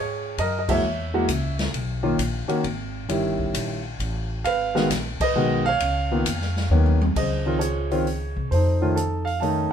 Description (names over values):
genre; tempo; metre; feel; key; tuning
jazz piano trio; 133 BPM; 3/4; swing 67% on 8ths; unclear; A4 = 440 Hz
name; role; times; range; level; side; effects
warm grand piano; melody; 0.0-9.7 s; D#3 to A5; -23 LUFS; right 1 dB; none
upright bass; bass; 0.0-9.7 s; G1 to C3; -25 LUFS; equal; none
open jazz drum kit; drums; 0.4-9.6 s; crash cymbal, hi-hat, kick drum, ride cymbal, snare drum, toms; -30 LUFS; left 2 dB; none
room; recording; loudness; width
light reverb; minimal, uncompressed stereo recording; -21 LUFS; side -8 dB against mid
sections
0.0-7.2 A section; 7.2-9.7 B section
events
band accent 0.6, 5.1; drum fill 6.7-7.2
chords
0.4 F#7; 1.7 Bmaj9; 3.1 D#7b9; 4.5 G#m7; 5.8 C#13; 7.2 Dbmaj9; 8.5 F7b13